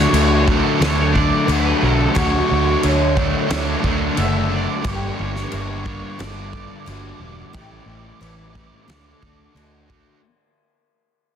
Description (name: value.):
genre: rock, shoegaze and dream pop.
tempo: 89 BPM.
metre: 4/4.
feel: straight.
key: D major.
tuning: A4 = 440 Hz.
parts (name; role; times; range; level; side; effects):
octave-fuzz lead guitar; melody; 0.0-9.5 s; A4 to E5; -26 LUFS; left 1 dB; distortion, slapback echo.
picked twelve-string acoustic guitar; arpeggios; 0.0-10.2 s; F#4 to C#5; -26 LUFS; right 2 dB; ensemble chorus, slapback echo.
crunchy overdriven guitar; riff; 0.0-10.2 s; G2 to F#4; -24 LUFS; right 10 dB; reverse reverb.
thick fuzz guitar; riff; 0.0-10.2 s; G2 to D4; -24 LUFS; left 10 dB; distortion, wide subtle chorus.
vintage muted fingered electric bass; bass; 0.0-10.0 s; E1 to D2; -22 LUFS; equal; none.
loose indie drum kit; drums; 0.1-10.0 s; crash cymbal, kick drum, snare drum; -24 LUFS; left 1 dB; soft clipping on snare.
room: light reverb, small room ambience.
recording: dense, heavily limited modern master.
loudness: -16 LUFS.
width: side -8 dB against mid.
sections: 0.0-10.2 A section.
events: fade-out 0.0-10.2.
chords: 0.0 Dmaj7; 4.8 Gmadd9; 7.5 A7sus4; 8.9 D.